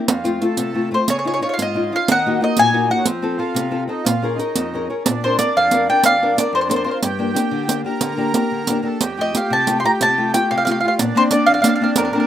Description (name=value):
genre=italian folk, Italian serenade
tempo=121 BPM (dotted quarters)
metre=6/8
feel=rubato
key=Bb minor, Bb major from 5.0 s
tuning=A4 = 440 Hz
part: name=nylon-string guitar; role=accompaniment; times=0.0-12.3 s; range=F2 to Bb4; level=-20 LUFS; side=left 2 dB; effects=none
part: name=accordion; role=second line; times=0.1-12.3 s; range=C4 to Bb4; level=-26 LUFS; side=right 5 dB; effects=none
part: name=riq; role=percussion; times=0.1-12.1 s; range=none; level=-21 LUFS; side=right 4 dB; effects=none
part: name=mandolin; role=melody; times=0.9-3.1, 5.2-7.0, 9.2-12.3 s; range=Bb4 to C6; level=-16 LUFS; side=equal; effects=none
room=light reverb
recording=rough home demo mix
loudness=-16 LUFS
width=side -11 dB against mid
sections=0.0-5.0 A section; 5.0-12.3 B section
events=none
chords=0.1 F; 1.1 Dbadd9; 2.1 Ebm; 3.1 F; 4.0 Bbm7; 5.0 Bbadd9; 7.0 Gm; 9.0 Fadd9; 11.0 Bbadd9